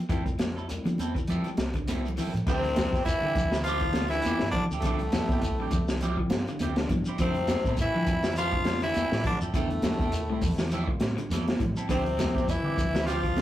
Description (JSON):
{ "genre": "afrobeat", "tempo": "102 BPM", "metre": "4/4", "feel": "swing 56% on 16ths", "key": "D minor", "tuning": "A4 = 439 Hz", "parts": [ { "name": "tine electric piano", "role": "accompaniment", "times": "0.1-13.4 s", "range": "E3 to A5", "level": "-40 LUFS", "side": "left 2 dB", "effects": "none" }, { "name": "clean electric guitar", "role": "arpeggios", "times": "0.1-13.4 s", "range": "A2 to F3", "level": "-37 LUFS", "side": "left 2 dB", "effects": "tremolo" }, { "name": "electric guitar at the edge of break-up", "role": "stabs", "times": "0.1-13.3 s", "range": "E3 to A4", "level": "-37 LUFS", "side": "right 4 dB", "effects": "phaser" }, { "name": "fingered electric bass", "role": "bass", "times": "0.1-13.4 s", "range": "A1 to F3", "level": "-33 LUFS", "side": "equal", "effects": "none" }, { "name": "crunchy breakbeat drum kit", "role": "drums", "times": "0.1-13.4 s", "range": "crash cymbal, hi-hat, kick drum, snare drum", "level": "-30 LUFS", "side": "equal", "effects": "none" }, { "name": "congas", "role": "percussion", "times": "0.1-13.4 s", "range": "none", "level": "-33 LUFS", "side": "right 1 dB", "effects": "none" }, { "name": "shekere", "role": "percussion", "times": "0.1-13.4 s", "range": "none", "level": "-38 LUFS", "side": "left 1 dB", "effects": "none" }, { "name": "raspy tenor saxophone", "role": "melody", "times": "2.5-13.4 s", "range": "A3 to F4", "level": "-30 LUFS", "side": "equal", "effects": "none" }, { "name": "brilliant bass trombone", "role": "second line", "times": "2.5-13.4 s", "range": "A2 to F3", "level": "-36 LUFS", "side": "left 2 dB", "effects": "none" }, { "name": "koto", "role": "second line", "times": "2.5-13.4 s", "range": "A4 to F5", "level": "-44 LUFS", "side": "right 1 dB", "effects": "none" } ], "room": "wet small room reverb, RT60 0.5 s", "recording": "rough rehearsal-room recording, tube saturation", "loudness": "-25 LUFS", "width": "side -13 dB against mid", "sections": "0.0-2.5 A section; 2.5-13.4 B section", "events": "drum fill 1.9-2.5; tine electric piano fill 5.4-7.2", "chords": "0.0 Fmaj7; 2.5 Dm11; 7.2 Fmaj7; 11.9 Dm11" }